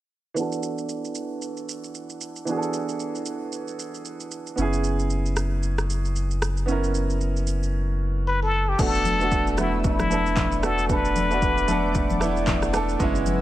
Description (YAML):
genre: amapiano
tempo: 114 BPM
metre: 4/4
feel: swing 58% on 16ths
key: unclear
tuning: A4 = 440 Hz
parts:
  - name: warm grand piano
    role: accompaniment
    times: 0.3-13.4 s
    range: E3 to A#4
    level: -27 LUFS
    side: right 3 dB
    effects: low-pass filter
  - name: deep house drum kit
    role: drums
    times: 0.4-13.4 s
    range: crash cymbal, handclaps, kick drum, rim click, shaker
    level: -28 LUFS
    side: equal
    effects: overdrive, vintage 12-bit sampler grit
  - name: warm sub bass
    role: bass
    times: 4.6-13.4 s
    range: E1 to F#1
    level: -26 LUFS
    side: equal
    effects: none
  - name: trumpet with plunger mute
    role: melody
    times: 8.3-12.5 s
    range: E4 to B4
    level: -25 LUFS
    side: left 3 dB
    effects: digital delay
  - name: warm analog pad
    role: sustained chords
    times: 9.6-13.4 s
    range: B4 to E6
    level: -34 LUFS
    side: left 1 dB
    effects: chorus, sidechain pumping
  - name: congas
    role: percussion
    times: 8.8-13.4 s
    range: none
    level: -31 LUFS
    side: left 4 dB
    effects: none
room: light reverb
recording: none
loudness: -22 LUFS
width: side -14 dB against mid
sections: 0.4-8.8 A section; 8.8-13.4 B section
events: filter sweep on grand piano 0.4-8.8; drums muted 7.7-8.8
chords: 0.4 E9sus4; 4.6 F#9sus4; 8.8 E9sus4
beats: | 0.37 0.90 1.42 1.95 | 2.47 3.00 3.53 4.05 | 4.58 5.11 5.63 6.16 | 6.68 7.21 7.74 8.26 | 8.79 9.32 9.84 10.37 | 10.89 11.42 11.95 12.47 | 13.00